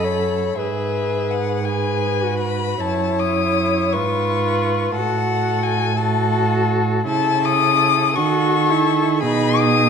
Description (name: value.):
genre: classical, slow romantic movement for string quartet.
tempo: 56 BPM (dotted quarters).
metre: 6/8.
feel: uneven beats, rubato.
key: unclear.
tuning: A4 = 435 Hz.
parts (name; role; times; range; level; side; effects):
muted violin; melody; 0.0-9.9 s; E5 to D#6; -21 LUFS; left 8 dB; none.
muted violin; second line; 0.0-9.9 s; G#4 to C#5; -23 LUFS; left 4 dB; none.
muted viola; accompaniment; 0.0-9.9 s; D#4 to A4; -23 LUFS; right 2 dB; none.
muted cello; bass; 0.0-9.9 s; F#2 to D#3; -22 LUFS; right 5 dB; none.
room: moderate recital hall reverb, RT60 1.3 s.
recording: none.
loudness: -17 LUFS.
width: side -6 dB against mid.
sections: 0.0-9.9 A section.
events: none.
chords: 0.0 B7(no3)/F#; 0.6 E/G#; 2.8 F#5; 3.9 C#7/G#; 5.0 F#m/A; 7.1 A/C#; 8.2 D#dim; 9.2 G#m/B.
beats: | 0.61 1.68 | 2.82 3.94 | 4.96 5.98 | 7.08 8.17 | 9.24.